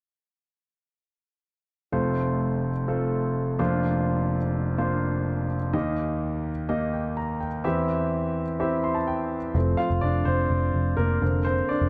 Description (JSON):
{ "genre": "pop", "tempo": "126 BPM", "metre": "4/4", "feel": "straight", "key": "F major", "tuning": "A4 = 440 Hz", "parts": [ { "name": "clear concert grand piano", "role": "accompaniment", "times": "1.9-11.9 s", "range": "F1 to C6", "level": "-26 LUFS", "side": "equal", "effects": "none" }, { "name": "vintage muted picked electric bass", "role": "bass", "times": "9.5-11.9 s", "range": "F1", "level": "-26 LUFS", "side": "equal", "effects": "none" } ], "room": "moderate large studio reverb, RT60 1.1 s, small room ambience", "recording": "dark, warm production", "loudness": "-26 LUFS", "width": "mono", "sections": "1.9-9.6 A section; 9.6-11.9 B section", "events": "grand piano fill 8.6-9.6; grand piano solo 9.6-11.9", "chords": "1.9 F; 3.6 Bbadd9/F; 5.7 Eb; 7.6 C/E; 9.6 F; 11.2 Bbadd9/F", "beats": "| 1.93 2.40 2.88 3.36 | 3.83 4.31 4.79 5.26 | 5.74 6.22 6.69 7.17 | 7.65 8.12 8.60 9.07 | 9.55 10.03 10.50 10.98 | 11.46" }